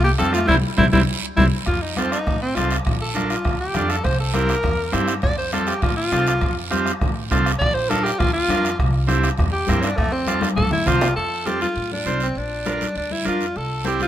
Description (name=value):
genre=latin, cumbia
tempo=202 BPM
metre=4/4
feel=straight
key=F major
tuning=A4 = 440 Hz
part: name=bright alto saxophone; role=melody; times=0.0-14.1 s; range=A3 to D5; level=-23 LUFS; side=equal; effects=none
part: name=growling clarinet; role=second line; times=0.0-1.4 s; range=G3 to C4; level=-24 LUFS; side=left 4 dB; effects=none
part: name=upright bass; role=bass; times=0.0-14.0 s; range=Bb1 to A2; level=-25 LUFS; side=equal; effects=none
part: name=combo organ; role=accompaniment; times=0.2-14.1 s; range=C4 to C5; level=-25 LUFS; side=right 3 dB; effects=none
part: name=bombo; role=percussion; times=0.2-11.2 s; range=none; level=-24 LUFS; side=equal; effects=none
part: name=congas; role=percussion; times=0.2-14.1 s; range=none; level=-28 LUFS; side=left 2 dB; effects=none
part: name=guiro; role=percussion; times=0.2-14.1 s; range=none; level=-33 LUFS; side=right 7 dB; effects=none
room=light reverb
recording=minimal, uncompressed stereo recording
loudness=-18 LUFS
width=side -11 dB against mid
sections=0.0-1.7 A section; 1.7-11.2 B section; 11.2-14.1 C section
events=band accent 0.5-1.7; alto saxophone solo 1.7-11.2; drum fill 10.4-11.2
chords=0.5 C; 1.7 F; 2.9 Bb; 4.0 C7; 5.2 F; 7.6 Bb; 8.8 C7; 10.0 F; 12.4 Bb; 13.6 C